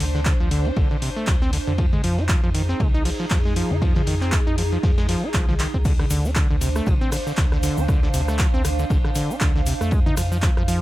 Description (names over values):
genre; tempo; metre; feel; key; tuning
acid house; 118 BPM; 4/4; swing 57% on 16ths; D minor; A4 = 440 Hz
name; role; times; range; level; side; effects
acid bass, saw; riff; 0.0-10.8 s; C3 to F4; -26 LUFS; equal; tube saturation, sidechain pumping
warm sub bass; bass; 0.0-10.8 s; A1 to F2; -25 LUFS; equal; tube saturation, sidechain pumping
booming analog drum machine; drums; 0.0-10.8 s; crash cymbal, handclaps, hi-hat, rim click, toms; -28 LUFS; equal; none
cloth-damped thuddy drum kit; drums; 0.0-10.8 s; hi-hat, ride cymbal, snare drum; -38 LUFS; left 2 dB; high-pass filter on cymbals, high-pass filter on hats, high-pass filter on snare, high-pass filter on room
airy breathy pad; texture; 0.0-10.8 s; D4 to F5; -30 LUFS; right 1 dB; chorus, sidechain pumping
electronic kick drum; drums; 0.3-10.5 s; none; -21 LUFS; equal; none
egg shaker; percussion; 5.8-10.8 s; none; -38 LUFS; left 5 dB; none
room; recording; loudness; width
little or no reverb; none; -18 LUFS; side -16 dB against mid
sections
0.0-10.8 A section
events
drum fill 5.6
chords
0.0 Dm7; 1.8 Fm7; 5.9 Dm7; 9.9 Fm7